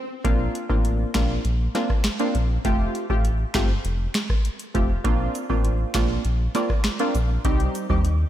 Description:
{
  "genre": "dancehall",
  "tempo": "100 BPM",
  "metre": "4/4",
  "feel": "straight",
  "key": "Bb major",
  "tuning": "A4 = 437 Hz",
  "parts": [
    { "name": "punchy chord stab", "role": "accompaniment", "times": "0.2-8.1 s", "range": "G3 to G4", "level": "-26 LUFS", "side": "right 1 dB", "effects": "chorus" },
    { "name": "round analog bass", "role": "bass", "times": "0.2-8.2 s", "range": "F1 to Eb2", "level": "-23 LUFS", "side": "equal", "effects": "none" },
    { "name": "booming analog drum machine", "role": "drums", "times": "0.2-8.2 s", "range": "finger snaps, hi-hat, kick drum, rim click, snare drum", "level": "-24 LUFS", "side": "equal", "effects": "none" },
    { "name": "woodblock and cabasa", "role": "percussion", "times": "5.0-8.0 s", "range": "none", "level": "-37 LUFS", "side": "right 7 dB", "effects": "none" }
  ],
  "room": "light reverb",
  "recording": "none",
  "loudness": "-20 LUFS",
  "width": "side -12 dB against mid",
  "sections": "0.2-8.3 A section",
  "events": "stop 0.0",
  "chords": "0.2 Bbadd9; 2.6 Fadd9; 5.0 Bbadd9; 7.4 Cm",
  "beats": "| 0.25 0.85 1.45 2.05 | 2.65 3.25 3.85 4.45 | 5.05 5.65 6.25 6.85 | 7.45 8.05"
}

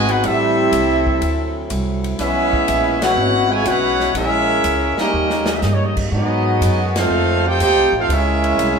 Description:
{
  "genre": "jazz, big band swing",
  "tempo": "122 BPM",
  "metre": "4/4",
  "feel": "swing 69% on 8ths",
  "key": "unclear",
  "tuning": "A4 = 440 Hz",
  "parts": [
    { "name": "bright trumpet section", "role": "melody", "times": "0.0-8.8 s", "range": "B3 to G#5", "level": "-19 LUFS", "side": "equal", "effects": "none" },
    { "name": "clear trombone section", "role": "second line", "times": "0.0-8.8 s", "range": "B2 to G4", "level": "-19 LUFS", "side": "right 1 dB", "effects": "none" },
    { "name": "warm trombone section", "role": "sustained chords", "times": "0.0-8.8 s", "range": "C3 to F#4", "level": "-27 LUFS", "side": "left 1 dB", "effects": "none" },
    { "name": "upright bass", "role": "bass", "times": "0.0-8.8 s", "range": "G#1 to G#2", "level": "-22 LUFS", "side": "equal", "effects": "none" },
    { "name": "swinging big-band drum kit", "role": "drums", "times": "0.1-8.7 s", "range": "crash cymbal, hi-hat, kick drum, ride cymbal, snare drum", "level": "-27 LUFS", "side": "left 1 dB", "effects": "none" }
  ],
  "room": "wet stone room reverb, RT60 1.0 s",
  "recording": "band playing live in one room",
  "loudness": "-15 LUFS",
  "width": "side -6 dB against mid",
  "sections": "0.0-8.8 A section",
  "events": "band accent 2.9, 6.9; drum fill 5.1-5.6",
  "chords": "0.2 Am7; 1.2 D9; 2.2 E6; 4.2 A#m7b5; 5.1 D#7; 6.1 G#m7; 7.1 F7; 8.1 A#m7b5",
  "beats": "| 0.24 0.73 1.22 1.71 | 2.20 2.69 3.18 3.67 | 4.16 4.65 5.14 5.63 | 6.12 6.62 7.11 7.60 | 8.09 8.59"
}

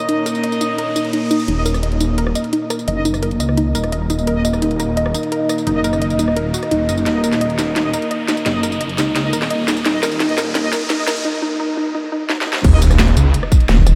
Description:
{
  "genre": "dark technical drum and bass",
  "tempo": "172 BPM",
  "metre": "4/4",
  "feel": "straight",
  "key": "Eb minor",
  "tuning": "A4 = 441 Hz",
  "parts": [
    { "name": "deep dark ambient pad", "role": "sustained chords", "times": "0.0-14.0 s", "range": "Bb3 to Eb5", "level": "-24 LUFS", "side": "equal", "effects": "chorus, built-in reverb, sidechain pumping" },
    { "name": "clear brass ensemble", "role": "stabs", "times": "0.0-12.8 s", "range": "Eb4 to Eb5", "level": "-30 LUFS", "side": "equal", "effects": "tape echo" },
    { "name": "drum and bass drum kit", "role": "drums", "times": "0.0-13.9 s", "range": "crash cymbal, hi-hat, rim click, snare drum, tambourine", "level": "-25 LUFS", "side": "equal", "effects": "overdrive, high-pass filter on hats, small room ambience, high-pass filter on perc, high-pass filter on snare, high-pass filter on cymbals" },
    { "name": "riser and sub drop", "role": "sound effects", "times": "0.0-14.0 s", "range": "none", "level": "-28 LUFS", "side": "equal", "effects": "none" },
    { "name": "warbly dusty pluck", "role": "arpeggios", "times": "0.1-12.6 s", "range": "Eb4 to Eb5", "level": "-24 LUFS", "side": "equal", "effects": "chorus, sidechain pumping, tape echo" },
    { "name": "snarling distorted saw bass", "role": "bass", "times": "1.5-13.3 s", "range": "Eb1 to Db2", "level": "-22 LUFS", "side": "equal", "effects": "distortion, tube saturation, sidechain pumping" },
    { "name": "electronic kick drum", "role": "drums", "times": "12.6-13.8 s", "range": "none", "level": "-14 LUFS", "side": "equal", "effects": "overdrive, small room ambience" },
    { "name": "vowel-sweep wobble bass", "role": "bass", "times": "13.7-14.0 s", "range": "Eb1", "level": "-13 LUFS", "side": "equal", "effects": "chorus" }
  ],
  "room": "moderate huge ambient reverb, RT60 8.7 s",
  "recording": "dreamy mix soaked in reverb, high-pass filter",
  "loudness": "-18 LUFS",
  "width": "mono",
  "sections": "0.0-1.5 A section; 1.5-12.6 B section; 12.6-14.0 C section",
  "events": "riser 0.0-1.5, 1.5-11.2; filter sweep on synth arpeggio sound 0.0-1.5; build-up 1.5-12.6; filter sweep 1.5-12.6; drum fill 7.1-11.2, 12.3-12.6; break 11.2-12.6; drop 12.6-14.0; impact 12.6-14.0",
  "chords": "0.0 Eb5",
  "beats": "| 0.09 0.43 0.78 1.13 | 1.48 1.83 2.18 2.53 | 2.88 3.23 3.58 3.92 | 4.27 4.62 4.97 5.32 | 5.67 6.02 6.37 6.71 | 7.06 7.41 7.76 8.11 | 8.46 8.81 9.16 9.51 | 9.85 10.20 10.55 10.90 | 11.25 11.60 11.95 12.30 | 12.64 12.99 13.34 13.69"
}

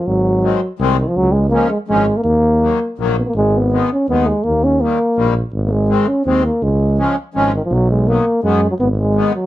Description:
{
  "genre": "alpine folk, alpine dance band",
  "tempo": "165 BPM",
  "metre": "3/4",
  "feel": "swing 53% on 8ths",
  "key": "unclear",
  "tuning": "A4 = 440 Hz",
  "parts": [
    { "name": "warm euphonium", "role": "melody", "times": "0.0-9.5 s", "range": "D#3 to C#4", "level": "-15 LUFS", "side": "equal", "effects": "none" },
    { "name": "mellow tuba", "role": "bass", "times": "0.1-9.3 s", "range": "G#1 to F#2", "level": "-18 LUFS", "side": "equal", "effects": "none" },
    { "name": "accordion", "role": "accompaniment", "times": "0.4-9.3 s", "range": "D#3 to C#4", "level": "-19 LUFS", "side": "left 4 dB", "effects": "light tremolo tuning" }
  ],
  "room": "light reverb",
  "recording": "none",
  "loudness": "-13 LUFS",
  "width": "side -14 dB against mid",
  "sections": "0.0-9.5 A section",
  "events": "none",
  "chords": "0.1 G#7; 1.2 C#; 2.2 D#m; 3.4 G#m; 4.5 D#; 5.5 G#; 6.6 C#; 7.7 B; 8.8 G#m",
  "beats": "| 0.07 0.43 0.80 | 1.16 1.52 1.88 | 2.25 2.62 2.99 | 3.36 3.72 4.09 | 4.45 4.82 5.18 | 5.54 5.90 6.26 | 6.62 6.98 7.35 | 7.71 8.07 8.44 | 8.80 9.16"
}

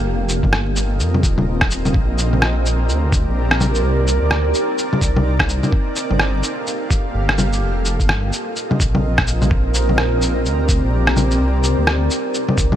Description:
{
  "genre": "future garage",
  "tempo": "127 BPM",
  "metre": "4/4",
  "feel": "swing 61% on 16ths",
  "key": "unclear",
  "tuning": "A4 = 440 Hz",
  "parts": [
    { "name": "granular cloud pad", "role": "sustained chords", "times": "0.0-12.8 s", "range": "Bb3 to F5", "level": "-22 LUFS", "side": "right 1 dB", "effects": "built-in reverb, vintage 12-bit sampler grit, sidechain pumping" },
    { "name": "swelling detuned saw bass", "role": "bass", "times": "0.0-12.8 s", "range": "Eb1 to F2", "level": "-18 LUFS", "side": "equal", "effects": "sidechain pumping" },
    { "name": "electronic shaker, bongos and rim click", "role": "drums", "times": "0.3-12.8 s", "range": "none", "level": "-20 LUFS", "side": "left 1 dB", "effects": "none" },
    { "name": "electronic kick drum", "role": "drums", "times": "0.4-12.7 s", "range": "none", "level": "-18 LUFS", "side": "equal", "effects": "none" }
  ],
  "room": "light reverb",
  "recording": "vinyl crackle, lossy compression artefacts",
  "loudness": "-15 LUFS",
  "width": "side -11 dB against mid",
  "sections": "0.0-12.8 A section",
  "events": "none",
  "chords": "0.1 F7sus4; 1.9 Bb69; 3.8 Cm9; 5.7 Gm9; 7.6 F7sus4; 9.5 Bb69; 11.4 Cm9",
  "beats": "| 0.06 0.53 1.00 1.48 | 1.95 2.42 2.89 3.37 | 3.84 4.31 4.78 5.25 | 5.73 6.20 6.67 7.14 | 7.62 8.09 8.56 9.04 | 9.51 9.98 10.45 10.93 | 11.40 11.87 12.34"
}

